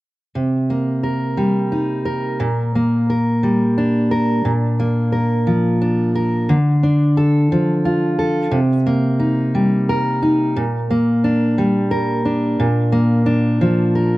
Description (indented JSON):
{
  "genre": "pop",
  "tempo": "59 BPM (dotted quarters)",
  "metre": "6/8",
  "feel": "straight",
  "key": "C dorian",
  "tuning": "A4 = 440 Hz",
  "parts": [
    { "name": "fingerpicked steel-string acoustic guitar", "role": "solo", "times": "0.4-14.2 s", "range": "Bb2 to Bb4", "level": "-15 LUFS", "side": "equal", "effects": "none" }
  ],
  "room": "light reverb",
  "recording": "recorded outdoors, with no room sound",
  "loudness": "-15 LUFS",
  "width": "side -18 dB against mid",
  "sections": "0.4-8.5 A section; 8.5-14.2 B section",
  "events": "none",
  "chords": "0.4 Cm7; 2.4 Gm/Bb; 4.4 Bb; 6.5 Dm; 8.5 Cm7; 10.6 Gm/Bb; 12.6 Bb"
}